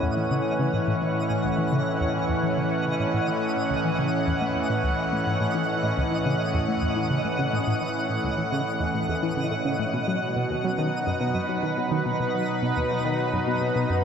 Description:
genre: ambient, sequencer-driven space music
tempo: 106 BPM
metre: 4/4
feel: straight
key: A lydian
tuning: A4 = 441 Hz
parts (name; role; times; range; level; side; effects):
- lush unison pad; sustained chords; 0.0-14.0 s; A2 to F#5; -24 LUFS; equal; chorus
- tight sequenced synth; riff; 0.0-14.0 s; C#2 to F#3; -28 LUFS; equal; chorus, analog delay
- twinkling granular texture; texture; 0.0-14.0 s; D#5; -35 LUFS; right 1 dB; built-in reverb
room: wet lush hall reverb, RT60 2.6 s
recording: none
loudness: -23 LUFS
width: side -7 dB against mid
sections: 0.0-14.0 A section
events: filter sweep on synth arpeggio sound 0.0-14.0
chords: 0.0 A6; 9.9 B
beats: 0.31 | 0.88 1.44 2.01 2.58 | 3.14 3.71 4.27 4.84 | 5.41 5.97 6.54 7.10 | 7.67 8.24 8.80 9.37 | 9.93 10.50 11.07 11.63 | 12.20 12.77 13.33 13.90

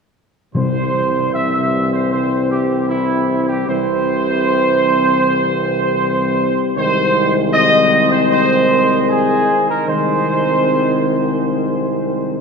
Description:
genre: classical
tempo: 77 BPM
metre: 4/4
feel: straight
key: unclear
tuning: A4 = 438 Hz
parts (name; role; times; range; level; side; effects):
- mellow trumpet section; melody; 0.5-12.2 s; E4 to E5; -16 LUFS; right 2 dB; none
- mellow French horn section; sustained chords; 0.5-12.4 s; G3 to C4; -21 LUFS; left 5 dB; none
- warm trombone section; sustained chords; 0.5-12.4 s; C3 to E3; -23 LUFS; right 1 dB; none
- warm tuba; bass; 0.5-12.4 s; C2; -21 LUFS; right 1 dB; none
- timpani; percussion; 0.5-1.7 s; C3; -24 LUFS; left 4 dB; none
room: wet cathedral reverb, RT60 7.1 s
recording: none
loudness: -13 LUFS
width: side -5 dB against mid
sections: 0.5-12.4 A section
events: none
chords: 0.5 C; 6.8 Ab/C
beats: | 0.54 1.33 2.12 2.90 | 3.69 4.46 5.23 6.00 | 6.76 7.52 8.30 9.08 | 9.87 10.67 11.47 12.26

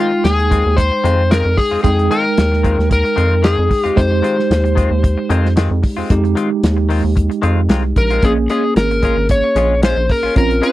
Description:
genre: straight-eighth soul blues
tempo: 113 BPM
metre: 4/4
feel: swing 54% on 16ths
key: F minor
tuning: A4 = 440 Hz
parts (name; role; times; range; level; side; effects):
- overdriven slide guitar; melody; 0.0-10.7 s; F4 to Db5; -16 LUFS; left 2 dB; none
- bell-like tine electric piano; accompaniment; 0.0-10.7 s; Ab3 to G5; -20 LUFS; right 3 dB; medium stereo tremolo
- direct-recorded clean electric guitar; stabs; 0.0-10.7 s; Eb3 to F4; -23 LUFS; left 6 dB; wide subtle chorus
- rubbery square bass; bass; 0.2-10.6 s; Ab1 to F2; -16 LUFS; equal; none
- warm soul drum kit; drums; 0.2-10.7 s; hi-hat, kick drum, snare drum; -16 LUFS; equal; none
room: little or no reverb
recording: dry, close 1970s-style studio recording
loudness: -12 LUFS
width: side -16 dB against mid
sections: 0.0-10.7 A section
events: none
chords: 0.0 Fm7; 8.2 Bbm7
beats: 0.24 0.78 1.31 | 1.84 2.37 2.91 3.44 | 3.97 4.50 5.04 5.57 | 6.10 6.63 7.17 7.70 | 8.23 8.76 9.30 9.83 | 10.36

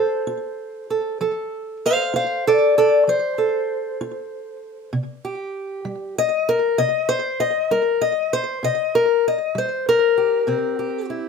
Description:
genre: acoustic country blues, solo or duo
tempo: 65 BPM (dotted quarters)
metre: 12/8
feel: straight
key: unclear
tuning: A4 = 440 Hz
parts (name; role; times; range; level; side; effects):
- fingerpicked acoustic archtop guitar; solo; 0.0-11.3 s; C3 to F5; -19 LUFS; left 2 dB; slapback echo
room: light reverb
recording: none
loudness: -18 LUFS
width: side -5 dB against mid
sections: 0.0-11.3 A section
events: steel-string acoustic guitar solo 0.0-11.3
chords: 0.0 F; 4.9 C7(no3)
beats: 0.28 | 1.21 2.14 3.07 4.00 | 4.92 5.85 6.78 7.70 | 8.63 9.55 10.48

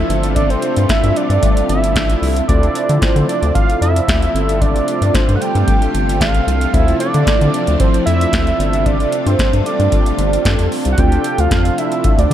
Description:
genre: early-eighties boogie funk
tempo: 113 BPM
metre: 4/4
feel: straight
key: D minor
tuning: A4 = 442 Hz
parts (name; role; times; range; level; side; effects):
- fat analog lead; melody; 0.0-12.3 s; C5 to G5; -19 LUFS; right 3 dB; chorus
- mellow synth brass; accompaniment; 0.0-12.3 s; C4 to A4; -21 LUFS; left 1 dB; chorus
- phased string machine; sustained chords; 0.0-12.3 s; C3 to F4; -24 LUFS; left 1 dB; ensemble chorus, phaser
- rubbery square bass; bass; 0.0-12.3 s; G1 to D3; -16 LUFS; equal; none
- booming analog drum machine; drums; 0.1-12.3 s; hi-hat, kick drum, snare drum; -18 LUFS; equal; none
room: moderate cathedral reverb, RT60 4.9 s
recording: dreamy mix soaked in reverb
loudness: -12 LUFS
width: side -11 dB against mid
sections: 0.0-11.0 A section; 11.0-12.3 B section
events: none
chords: 0.1 G9sus4; 2.5 Dm7; 4.3 G9sus4; 6.7 Dm7; 8.6 G9sus4; 11.0 Dm7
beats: | 0.36 0.89 1.42 1.96 | 2.49 3.02 3.55 4.08 | 4.61 5.14 5.67 6.20 | 6.73 7.26 7.80 8.33 | 8.86 9.39 9.92 10.45 | 10.98 11.51 12.04

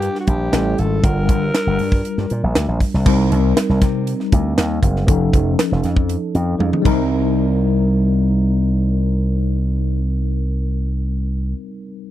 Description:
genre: polished 1980s jazz-funk pop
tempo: 119 BPM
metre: 4/4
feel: straight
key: C minor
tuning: A4 = 440 Hz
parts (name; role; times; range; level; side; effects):
- breathy alto saxophone; melody; 0.0-2.6 s; F#4 to Bb4; -24 LUFS; equal; slapback echo
- tine electric piano; accompaniment; 0.0-12.1 s; F3 to Bb4; -22 LUFS; left 2 dB; slow stereo tremolo, wide subtle chorus
- slap bass with an envelope filter; bass; 0.0-11.5 s; F1 to C3; -18 LUFS; equal; none
- crisp fusion drum kit; drums; 0.0-7.0 s; crash cymbal, hi-hat, kick drum, snare drum, toms; -18 LUFS; equal; none
room: little or no reverb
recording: dry, close 1970s-style studio recording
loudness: -15 LUFS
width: side -13 dB against mid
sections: 0.0-3.1 A section; 3.1-7.1 B section; 7.1-11.2 C section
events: drum fill 6.6-7.1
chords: 0.0 Gm7; 0.5 A7; 1.0 Gm7; 3.1 Cm7; 5.1 F7alt; 6.9 Cm7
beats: 0.02 0.53 | 1.03 1.54 2.05 2.55 | 3.06 3.56 4.07 4.57 | 5.08 5.59 6.09 6.60 | 7.11 7.61 8.12 8.63 | 9.13 9.64 10.15 10.66

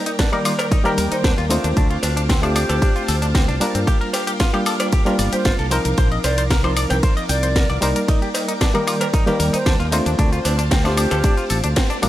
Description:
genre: nu-disco, nu disco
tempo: 114 BPM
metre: 4/4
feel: straight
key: unclear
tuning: A4 = 441 Hz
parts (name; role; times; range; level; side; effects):
- barky reed electric piano; accompaniment; 0.0-12.1 s; Eb3 to D5; -23 LUFS; equal; overdrive, harmonic tremolo, sidechain pumping
- string machine, full ensemble; sustained chords; 0.0-12.1 s; Bb4 to D6; -30 LUFS; equal; ensemble chorus, sidechain pumping
- direct-recorded clean electric guitar; riff; 0.0-12.1 s; C4 to G5; -26 LUFS; left 2 dB; lush chorus
- house drum kit; drums; 0.1-12.1 s; hi-hat, ride cymbal, shaker, snare drum, woodblock; -25 LUFS; left 1 dB; none
- electronic kick drum; drums; 0.2-11.9 s; none; -18 LUFS; equal; none
- cowbell; percussion; 0.6-11.2 s; none; -28 LUFS; right 2 dB; none
- fingered electric bass; bass; 1.0-12.1 s; G1 to G2; -21 LUFS; equal; sidechain pumping
- breathy hollow jazz flute; melody; 1.1-11.6 s; G4 to D5; -28 LUFS; right 1 dB; digital delay
room: digital ambience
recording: none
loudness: -16 LUFS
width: side -14 dB against mid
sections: 0.0-12.1 A section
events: band accent 11.8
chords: 0.0 Ebmaj7; 1.8 Dm7; 3.9 Gm7; 5.7 Cm11; 8.1 Ebmaj7; 10.2 Dm7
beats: 0.19 0.71 1.24 | 1.77 2.29 2.82 3.35 | 3.87 4.40 4.92 5.45 | 5.98 6.50 7.03 7.56 | 8.08 8.61 9.14 9.66 | 10.19 10.71 11.24 11.77

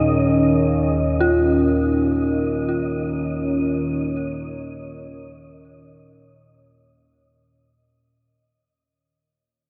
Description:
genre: dark ambient drone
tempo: free time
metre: none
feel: none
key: unclear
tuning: A4 = 439 Hz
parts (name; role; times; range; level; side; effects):
- deep dark ambient pad; sustained chords; 0.0-8.2 s; Eb3 to F5; -22 LUFS; equal; chorus, built-in reverb
- dark detuned synth bell; arpeggios; 0.0-8.2 s; F4 to Ab4; -26 LUFS; equal; chorus, delay
- analog drone; drone; 0.0-8.3 s; Eb2 to Bb2; -30 LUFS; equal; subtle chorus
- wind-like tuned noise texture; texture; 0.0-8.2 s; Eb5; -36 LUFS; equal; built-in reverb
room: wet huge ambient reverb, RT60 7.4 s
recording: none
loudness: -20 LUFS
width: mono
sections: 0.0-8.2 A section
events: fade-out 0.0-8.2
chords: 0.0 Db6/Eb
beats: free time

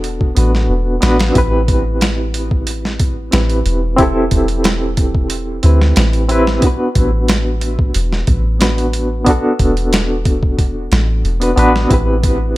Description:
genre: trip hop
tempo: 91 BPM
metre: 4/4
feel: straight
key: A dorian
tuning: A4 = 440 Hz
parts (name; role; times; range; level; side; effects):
- reed electric piano; accompaniment; 0.0-12.6 s; B3 to B4; -17 LUFS; equal; medium tremolo, tape echo
- soft 808-style bass; bass; 0.0-12.6 s; E1 to D2; -16 LUFS; equal; none
- boom bap sampler-style drum kit; drums; 0.0-12.4 s; hi-hat, kick drum, snare drum; -16 LUFS; equal; small room ambience
room: little or no reverb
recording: none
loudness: -12 LUFS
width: side -18 dB against mid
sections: 0.0-12.6 A section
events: none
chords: 0.0 Bm; 1.4 Am9; 6.6 Bm; 11.9 Am9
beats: 0.03 0.69 | 1.35 2.01 2.67 3.33 | 3.99 4.65 5.31 5.97 | 6.63 7.29 7.95 8.60 | 9.26 9.92 10.58 11.24 | 11.90 12.56

